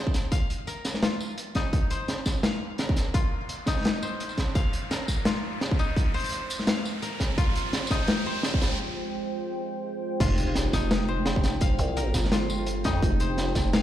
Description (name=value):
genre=half-time drum and bass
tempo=170 BPM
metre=4/4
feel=swing 58% on 16ths, half-time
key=F minor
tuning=A4 = 440 Hz
part: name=deep dark ambient pad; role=sustained chords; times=0.5-13.8 s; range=Ab3 to C5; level=-35 LUFS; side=right 1 dB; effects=chorus, built-in reverb, sidechain pumping
part: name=koto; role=arpeggios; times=0.0-13.8 s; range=Eb4 to F5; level=-34 LUFS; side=left 4 dB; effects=tape echo
part: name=riser and sub drop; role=sound effects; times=0.5-11.6 s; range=none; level=-37 LUFS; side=right 1 dB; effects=none
part: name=crunchy breakbeat drum kit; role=drums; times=0.1-13.8 s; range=crash cymbal, hi-hat, snare drum, tambourine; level=-29 LUFS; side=equal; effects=none
part: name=electronic kick drum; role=drums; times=0.1-13.6 s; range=none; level=-26 LUFS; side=equal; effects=distortion
part: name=growling 808-style bass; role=bass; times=10.2-13.8 s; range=F1 to F2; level=-28 LUFS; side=equal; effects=tube saturation
room=light reverb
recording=played on a big sound system in a bare room, large studio reverb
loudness=-24 LUFS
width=side -12 dB against mid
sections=0.0-10.2 A section; 10.2-13.8 B section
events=build-up 0.0-10.2; filter sweep on ambient pad 0.0-10.2; riser 0.5-8.8; break 8.8-10.2; drop 10.2-13.8; impact 10.2-11.6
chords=0.0 Fmadd9